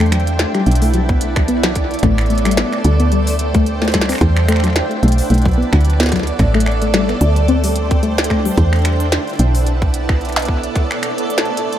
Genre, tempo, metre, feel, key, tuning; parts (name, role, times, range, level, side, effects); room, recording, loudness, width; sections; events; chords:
IDM; 110 BPM; 4/4; swing 56% on 16ths; A dorian; A4 = 439 Hz
granular cloud pad; sustained chords; 0.0-11.8 s; A3 to A5; -20 LUFS; right 2 dB; built-in reverb
soft round pluck; arpeggios; 0.0-8.6 s; F#3 to C4; -19 LUFS; left 3 dB; chorus, analog delay
woody FM bass; bass; 0.0-10.7 s; A1 to E2; -16 LUFS; equal
glitchy drum kit; drums; 0.0-11.8 s; finger snaps, hi-hat, snare drum; -22 LUFS; right 1 dB; overdrive, tape echo
electronic kick drum; drums; 1.1-10.9 s; -17 LUFS; equal; overdrive
light reverb, digital ambience; echo-heavy mix; -13 LUFS; side -11 dB against mid
0.0-11.8 A section
0.0 Em11; 0.7 Bm11; 2.0 Am11; 3.1 Dm11; 4.2 Em11; 5.0 Bm11; 6.4 Am11; 7.5 Dm11; 8.6 Em11; 9.4 Bm11; 10.8 Am11